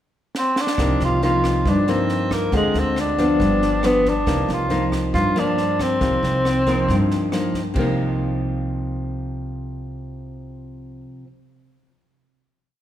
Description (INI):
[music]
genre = bossa nova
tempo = 138 BPM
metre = 4/4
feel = straight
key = C minor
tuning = A4 = 442 Hz
[part]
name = compact cocktail drum kit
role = drums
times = 0.3-7.9 s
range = crash cymbal, kick drum, rim click, snare drum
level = -29 LUFS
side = right 1 dB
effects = none
[part]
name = breathy tenor saxophone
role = melody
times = 0.4-7.3 s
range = Ab3 to F4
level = -21 LUFS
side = equal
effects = none
[part]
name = nylon-string guitar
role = accompaniment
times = 0.8-11.3 s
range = G2 to F4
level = -22 LUFS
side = left 1 dB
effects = none
[part]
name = upright bass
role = bass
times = 0.8-11.0 s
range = G1 to G2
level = -26 LUFS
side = right 1 dB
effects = none
[sound]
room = moderate concert hall reverb, RT60 2.1 s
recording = recorded in a church or concert hall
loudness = -18 LUFS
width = side -11 dB against mid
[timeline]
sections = 0.0-0.8 pickup bar; 0.8-7.8 A section; 7.8-11.3 final chord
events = drum fill 0.3-0.8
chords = 0.0 N.C.; 0.8 Cm7; 2.5 Dm7b5; 3.4 G7; 4.3 Cm11; 7.8 Cm7